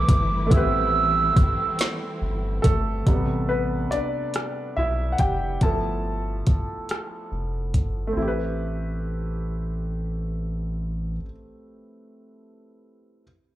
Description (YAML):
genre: slow six-eight R&B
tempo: 47 BPM (dotted quarters)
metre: 6/8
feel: straight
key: A minor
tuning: A4 = 440 Hz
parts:
  - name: hollow clarinet-like synth lead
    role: melody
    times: 0.0-2.6 s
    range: D6 to E6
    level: -24 LUFS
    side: right 4 dB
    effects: chorus, slapback echo, tape echo
  - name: clear concert grand piano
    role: accompaniment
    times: 0.0-13.2 s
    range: C3 to A5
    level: -28 LUFS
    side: equal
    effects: slapback echo
  - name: dark symphonic string section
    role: sustained chords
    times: 0.0-3.0 s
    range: E3 to B4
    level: -33 LUFS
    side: equal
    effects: none
  - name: round analog bass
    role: bass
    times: 0.0-11.2 s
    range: F1 to B1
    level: -27 LUFS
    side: equal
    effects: none
  - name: smooth R&B drum kit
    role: drums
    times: 0.1-7.9 s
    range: hi-hat, kick drum, rim click, snare drum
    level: -20 LUFS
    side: equal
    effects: none
room: digital ambience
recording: live gig heard through the venue's PA, club reverb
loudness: -22 LUFS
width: side -14 dB against mid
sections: 0.0-3.1 A section; 3.1-8.2 B section; 8.2-10.7 C section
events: grand piano solo 3.1-8.2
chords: 0.0 Am9; 5.6 G13; 8.2 Am9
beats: | 0.51 1.78 | 3.06 4.34 | 5.61 6.89 | 8.17 9.44